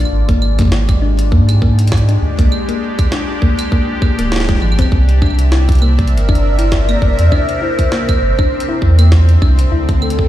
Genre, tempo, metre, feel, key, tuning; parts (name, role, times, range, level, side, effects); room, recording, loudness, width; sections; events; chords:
IDM; 100 BPM; 4/4; swing 56% on 16ths; A4 = 439 Hz
phased analog pad; sustained chords; 0.0-10.3 s; C3 to E5; -22 LUFS; equal; phaser, chorus, vintage 12-bit sampler grit
thumb-piano-like synth pluck; arpeggios; 0.0-10.1 s; F3 to E4; -21 LUFS; left 4 dB; chorus, digital delay
warm sub bass; bass; 0.0-10.3 s; D1 to Ab2; -12 LUFS; equal
pulsing gated texture; texture; 0.0-10.3 s; D4 to D5; -28 LUFS; left 4 dB; chorus, built-in reverb
jungle sampler-style drum kit; drums; 0.1-10.2 s; claves, hi-hat, snare drum; -25 LUFS; right 1 dB; small room ambience, ping-pong delay
electronic kick drum; drums; 0.3-10.3 s; -14 LUFS; equal; small room ambience
warbly nostalgic lead; melody; 5.8-10.3 s; A4 to E5; -21 LUFS; right 1 dB; lush chorus, digital delay
digital ambience; played on a big sound system in a bare room, stone room reverb; -10 LUFS; side -13 dB against mid
0.0-10.3 A section
0.1 Fm6/Ab; 4.9 C7; 9.7 D7(no3)